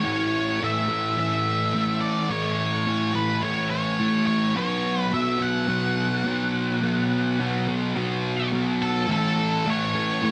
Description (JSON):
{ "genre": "rock", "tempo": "106 BPM", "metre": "4/4", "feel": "straight", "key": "A major", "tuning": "A4 = 439 Hz", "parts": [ { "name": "octave-fuzz lead guitar", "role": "melody", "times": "0.0-10.3 s", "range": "A4 to F#5", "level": "-29 LUFS", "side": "equal", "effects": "distortion, analog delay" }, { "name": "thick fuzz guitar", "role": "riff", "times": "0.0-10.3 s", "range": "A2 to B3", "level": "-26 LUFS", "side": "equal", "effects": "distortion, analog chorus" } ], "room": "moderate echo chamber reverb, RT60 2.0 s, digital ambience", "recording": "dense, heavily limited modern master, lossy compression artefacts", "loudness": "-24 LUFS", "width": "mono", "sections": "0.0-9.1 A section; 9.1-10.3 A section", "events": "none", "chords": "0.0 A; 4.6 B5; 9.1 A" }